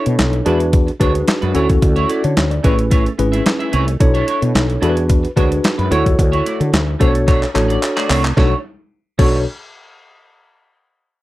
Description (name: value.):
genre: early-eighties boogie funk.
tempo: 110 BPM.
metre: 4/4.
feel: straight.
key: B dorian.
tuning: A4 = 440 Hz.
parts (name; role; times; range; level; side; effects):
mellow tine electric piano; accompaniment; 0.0-9.4 s; C#4 to D5; -19 LUFS; left 1 dB; medium stereo tremolo.
semi-hollow electric guitar; riff; 0.0-9.4 s; G#3 to E5; -23 LUFS; right 4 dB; analog chorus.
woody fretless electric bass; bass; 0.1-9.4 s; G#1 to D3; -18 LUFS; equal; wide subtle chorus.
detuned 8-bit digital drum machine; drums; 0.1-9.3 s; crash cymbal, handclaps, hi-hat, kick drum, snare drum; -16 LUFS; equal; none.
room: little or no reverb.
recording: dark, warm production.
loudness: -13 LUFS.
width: side -16 dB against mid.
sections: 0.0-8.4 A section; 8.4-10.6 B section.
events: drum fill 7.3-8.4.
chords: 0.5 E9; 1.6 Dmaj9; 2.6 Amaj7; 4.0 Bm11; 4.8 E9; 5.9 Dmaj9; 7.0 Bm9.